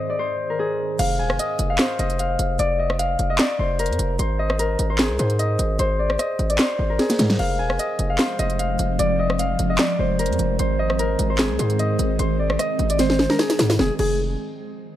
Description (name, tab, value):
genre	hip hop, trap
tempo	150 BPM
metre	4/4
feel	half-time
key	unclear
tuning	A4 = 444 Hz
part	Celtic harp	melody	0.0-14.2 s	Ab4 to Ab5	-23 LUFS	left 1 dB	low-pass filter, tape echo
part	ethereal airy pad	sustained chords	0.0-1.0, 8.1-14.0 s	Ab2 to Ab4	-28 LUFS	equal	ensemble chorus, built-in reverb, tremolo
part	distorted 808-style bass	bass	1.0-14.4 s	Eb1 to Ab2	-23 LUFS	equal	distortion
part	trap drum kit	drums	1.0-14.1 s	crash cymbal, handclaps, hi-hat, rim click, snare drum	-22 LUFS	equal	none
room	light reverb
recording	none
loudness	-19 LUFS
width	side -12 dB against mid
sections	1.0-13.8 A section; 13.8-15.0 B section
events	drum fill 7.0-7.4, 13.0-13.8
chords	0.0 Ab; 1.0 Ebsus24; 4.2 Ab; 7.4 Fm; 10.6 Ab; 13.8 Fm